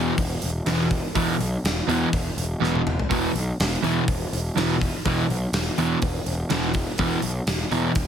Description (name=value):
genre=hard rock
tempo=123 BPM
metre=4/4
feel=straight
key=unclear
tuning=A4 = 440 Hz
part: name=overdriven semi-hollow guitar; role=riff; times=0.0-7.9 s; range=E2 to E3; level=-26 LUFS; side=right 10 dB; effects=none
part: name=sludgy distorted guitar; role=riff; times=0.0-7.9 s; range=E2 to E3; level=-26 LUFS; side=left 8 dB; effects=overdrive
part: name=fuzz picked electric bass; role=bass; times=0.0-8.1 s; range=E1 to E2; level=-27 LUFS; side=equal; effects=overdrive
part: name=gated 80s drum kit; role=drums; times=0.2-8.1 s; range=hi-hat, kick drum, snare drum, toms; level=-26 LUFS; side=equal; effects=none
room=light reverb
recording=heavily compressed radio sound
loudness=-21 LUFS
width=side -8 dB against mid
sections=0.0-8.1 A section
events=drum fill 2.6-3.1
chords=0.0 E5